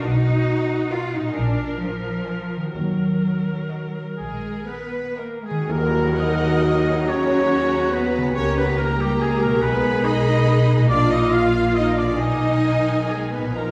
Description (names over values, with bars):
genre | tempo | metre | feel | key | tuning
classical, slow romantic movement for symphony orchestra | 38-47 BPM (dotted quarters) | 6/8 | rubato | Eb minor | A4 = 441 Hz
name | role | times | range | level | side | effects
rich chamber viola section | accompaniment | 0.0-13.7 s | Eb3 to Bb4 | -28 LUFS | equal | none
concert harp | arpeggios | 0.0-13.7 s | Bb2 to A#4 | -31 LUFS | equal | none
rich studio double bass section | bass | 0.0-13.7 s | Bb1 to Eb2 | -26 LUFS | equal | none
rich symphonic cello section | bass | 0.0-13.7 s | F3 to F4 | -28 LUFS | equal | none
dark symphonic violin section | melody | 0.9-13.7 s | F5 to Cb6 | -36 LUFS | equal | none
clear symphonic violin section | second line | 0.9-13.7 s | G4 to F5 | -34 LUFS | equal | none
hollow small flute group | second line | 4.2-13.7 s | G4 to F5 | -32 LUFS | equal | none
warm oboe | second line | 4.2-13.7 s | G4 to F5 | -30 LUFS | equal | none
mellow French horn section | sustained chords | 5.7-13.7 s | Eb4 to Bb4 | -29 LUFS | equal | none
tam-tam | percussion | 5.7-9.2 s | none | -33 LUFS | equal | none
room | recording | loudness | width
wet scoring stage reverb, RT60 1.9 s | heard from further back in the room | -21 LUFS | mono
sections
0.0-5.7 A section; 5.7-13.7 B section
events
band accent 5.7-6.6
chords
0.0 Bmaj7; 1.4 Bb7; 2.7 Ebm; 8.4 Eb7/Db; 9.6 Abm/Cb; 10.9 Bb; 12.2 Abm/Cb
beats
| 0.04 1.36 | 2.74 4.18 | 5.69 7.08 | 8.35 9.63 | 10.90 12.19 | 13.55